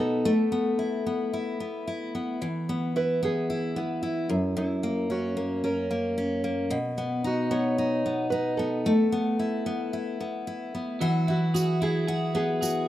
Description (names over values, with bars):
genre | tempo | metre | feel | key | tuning
acoustic pop | 112 BPM | 4/4 | swing 55% on 16ths | E major | A4 = 440 Hz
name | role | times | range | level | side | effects
nylon-string guitar | melody | 0.0-12.9 s | E4 to C#5 | -31 LUFS | right 2 dB | none
picked steel-string acoustic guitar | accompaniment | 0.0-12.9 s | F#2 to F#4 | -26 LUFS | left 1 dB | none
twelve-string electric guitar | arpeggios | 11.0-12.9 s | F#3 to G#4 | -37 LUFS | right 9 dB | none
tambourine | percussion | 11.6-12.8 s | none | -36 LUFS | right 5 dB | none
room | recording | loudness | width
moderate plate reverb, RT60 3.3 s | rough home demo mix | -25 LUFS | side -13 dB against mid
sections
0.0-11.0 A section; 11.0-12.9 B section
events
none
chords
0.3 Asus2; 2.4 E; 4.3 F#; 6.7 B; 8.9 Asus2; 11.0 Eadd9